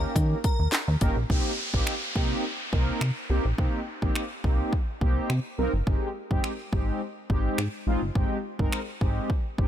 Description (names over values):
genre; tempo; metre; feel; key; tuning
dance-pop; 105 BPM; 4/4; straight; unclear; A4 = 439 Hz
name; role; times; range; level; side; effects
mellow synth brass; accompaniment; 0.0-9.7 s; Ab3 to Bb4; -31 LUFS; equal; chorus, sidechain pumping
plucky analog bass; bass; 0.0-9.7 s; G1 to Eb3; -27 LUFS; equal; sidechain pumping
house drum kit; drums; 0.2-9.7 s; finger snaps, handclaps, hi-hat, kick drum, snare drum; -27 LUFS; equal; overdrive
airy dreamy lead; melody; 0.4-0.7 s; Bb4; -37 LUFS; left 1 dB; chorus, sidechain pumping, tape echo
downlifter; sound effects; 1.3-5.9 s; none; -34 LUFS; equal; none
room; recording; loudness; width
little or no reverb; none; -24 LUFS; side -10 dB against mid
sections
0.0-1.3 A section; 1.3-9.7 B section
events
drop 0.0-1.3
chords
0.0 Cm7 (rootless); 1.3 Cm7; 5.9 Abmaj7